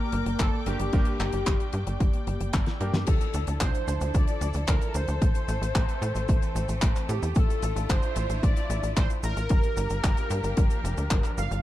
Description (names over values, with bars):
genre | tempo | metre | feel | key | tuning
italo disco | 112 BPM | 4/4 | straight | D minor | A4 = 439 Hz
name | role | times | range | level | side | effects
analog synth brass | melody | 0.0-11.6 s | G4 to F5 | -33 LUFS | left 1 dB | chorus, digital delay
rich symphonic string section | sustained chords | 0.0-11.6 s | E3 to D6 | -37 LUFS | equal | none
bright electric grand piano | stabs | 0.0-3.0 s | G2 to Bb4 | -38 LUFS | right 3 dB | digital delay
tight sequencer bass | bass | 0.1-11.6 s | F1 to A2 | -29 LUFS | equal | tube saturation
damped 70s drum kit | drums | 0.1-11.6 s | cabasa, crash cymbal, handclaps, hi-hat, snare drum | -34 LUFS | left 1 dB | studio ambience
electronic kick drum | drums | 0.4-11.2 s | none | -25 LUFS | equal | studio ambience
room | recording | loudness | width
light reverb, small room ambience | dark, warm production | -24 LUFS | side -14 dB against mid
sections
0.0-3.1 A section; 3.1-11.6 B section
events
drum fill 2.5-3.1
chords
0.0 Gm; 3.1 Dmadd9; 5.2 Am; 7.4 Dmadd9; 9.5 Gm7